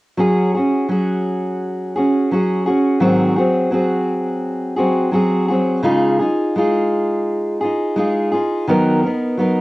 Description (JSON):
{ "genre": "pop", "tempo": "85 BPM", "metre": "4/4", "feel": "swing 60% on 16ths", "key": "F# major", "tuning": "A4 = 439 Hz", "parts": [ { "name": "fingerpicked steel-string acoustic guitar", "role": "accompaniment", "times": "0.2-9.6 s", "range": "G#2 to A#4", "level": "-15 LUFS", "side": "equal", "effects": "cassette tape" } ], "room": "moderate studio reverb, RT60 0.6 s", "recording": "home recording on cassette", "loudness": "-15 LUFS", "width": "side -19 dB against mid", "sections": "0.2-9.6 A section", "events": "none", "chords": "0.2 F#sus2; 3.0 G#7; 5.8 C#add9; 8.7 Bmaj7/D#" }